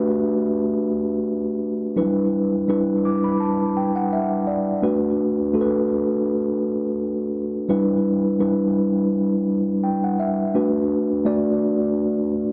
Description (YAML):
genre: soul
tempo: 84 BPM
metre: 4/4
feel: swing 54% on 16ths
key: D major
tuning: A4 = 440 Hz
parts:
  - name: mellow tine electric piano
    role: solo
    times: 0.0-12.5 s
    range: F#3 to D6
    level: -22 LUFS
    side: equal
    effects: tape echo
room: light reverb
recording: dry, close 1970s-style studio recording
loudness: -22 LUFS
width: mono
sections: 0.0-12.5 A section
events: tine electric piano fill 2.7-4.8, 9.5-10.6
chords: 0.0 D6; 2.0 Em7; 4.8 D6; 7.7 Em7; 10.6 D6